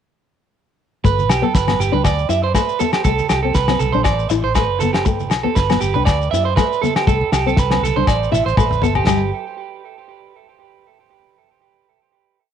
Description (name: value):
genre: highlife guitar band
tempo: 120 BPM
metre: 4/4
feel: swing 54% on 16ths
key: G major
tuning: A4 = 439 Hz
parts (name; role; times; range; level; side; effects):
- nylon-string guitar; accompaniment; 1.0-9.2 s; G3 to E4; -22 LUFS; left 12 dB; none
- vintage muted fingered electric bass; bass; 1.0-9.3 s; F#1 to F#2; -21 LUFS; left 1 dB; none
- damped 70s drum kit; drums; 1.0-9.2 s; crash cymbal, kick drum, snare drum, toms; -18 LUFS; equal; none
- electric guitar at the edge of break-up; arpeggios; 1.1-9.3 s; G4 to E5; -20 LUFS; right 10 dB; spring reverb, tape echo
- shekere; percussion; 1.1-9.3 s; none; -28 LUFS; left 6 dB; none
- congas; percussion; 1.2-9.3 s; none; -27 LUFS; right 8 dB; none
- agogo bells; percussion; 1.3-9.2 s; none; -25 LUFS; left 13 dB; none
room: light reverb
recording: home recording on cassette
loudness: -14 LUFS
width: side -8 dB against mid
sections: 1.0-9.1 groove; 9.1-11.1 final note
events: drum fill 8.1-9.1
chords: 1.0 Gadd9; 2.0 Dsus2; 3.1 C5; 4.1 Asus2; 5.1 Gadd9; 6.1 Dsus2; 7.1 C5; 8.1 Asus2; 9.1 N.C.